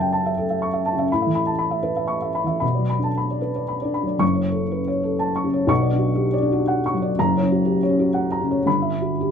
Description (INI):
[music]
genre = neoclassical minimalist piano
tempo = 110-126 BPM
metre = 3/4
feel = rubato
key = unclear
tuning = A4 = 440 Hz
[part]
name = felt-muted upright piano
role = solo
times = 0.0-9.3 s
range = F#1 to C#6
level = -19 LUFS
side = equal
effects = none
[sound]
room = moderate small room reverb, RT60 0.5 s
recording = dark, warm production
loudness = -19 LUFS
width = side -7 dB against mid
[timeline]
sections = 0.0-4.2 A section; 4.2-9.3 B section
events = none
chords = 0.0 F#m7; 1.1 Aadd9; 2.6 Bm; 4.2 F#m; 5.7 Bmadd9; 7.2 F#; 8.7 Emadd9/G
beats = 0.11 0.59 | 1.08 1.57 2.08 | 2.62 3.15 3.69 | 4.21 4.71 5.21 | 5.70 6.18 6.68 | 7.16 7.64 8.14 | 8.66 9.18